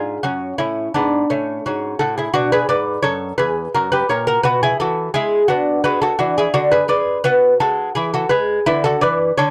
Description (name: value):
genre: classical, baroque-style dance for lute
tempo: 85 BPM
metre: 3/4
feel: rubato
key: unclear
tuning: A4 = 442 Hz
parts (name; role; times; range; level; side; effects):
- lute; solo; 0.0-9.5 s; E2 to D5; -18 LUFS; equal; none
room: light reverb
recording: dry, close 1970s-style studio recording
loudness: -18 LUFS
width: mono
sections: 0.0-9.5 A section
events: none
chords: 0.2 F#m; 2.4 Bm; 3.7 F#; 4.4 Bm; 6.5 Bm/D; 8.0 E; 8.7 E7(no3)/D